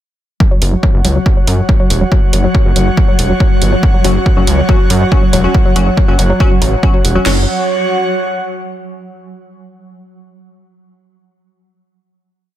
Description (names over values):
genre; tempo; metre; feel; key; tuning
driving peak-time techno; 140 BPM; 4/4; straight; unclear; A4 = 440 Hz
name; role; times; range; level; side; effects
woody wave-folded pluck; riff; 0.4-7.5 s; F#3; -19 LUFS; left 1 dB; chorus, cassette tape, sidechain pumping, digital delay
swarming drone; drone; 1.4-7.3 s; F#3; -23 LUFS; right 2 dB; built-in reverb, sidechain pumping
techno drum kit; drums; 0.4-7.4 s; crash cymbal, kick drum, snare drum; -12 LUFS; equal; none
airy breathy pad; texture; 0.4-8.9 s; F#4 to F#5; -19 LUFS; right 1 dB; chorus, sidechain pumping
gritty driven synth bass; bass; 0.6-7.5 s; E1 to F#2; -14 LUFS; equal; sidechain pumping
electronic hi-hat; drums; 0.6-7.1 s; none; -19 LUFS; right 3 dB; none
wavetable chord stab; stabs; 4.0-7.4 s; F#3 to F#4; -20 LUFS; left 2 dB; cassette tape, sidechain pumping, dub echo
room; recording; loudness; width
digital ambience; dense, heavily limited modern master; -9 LUFS; side -12 dB against mid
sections
0.4-7.3 groove; 7.3-9.0 final chord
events
filter sweep on synth arpeggio sound 0.4-7.3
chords
0.4 F#5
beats
| 0.40 0.83 1.26 1.69 | 2.12 2.55 2.98 3.40 | 3.83 4.26 4.69 5.12 | 5.55 5.97 6.40 6.83 | 7.26 7.69 8.12 8.55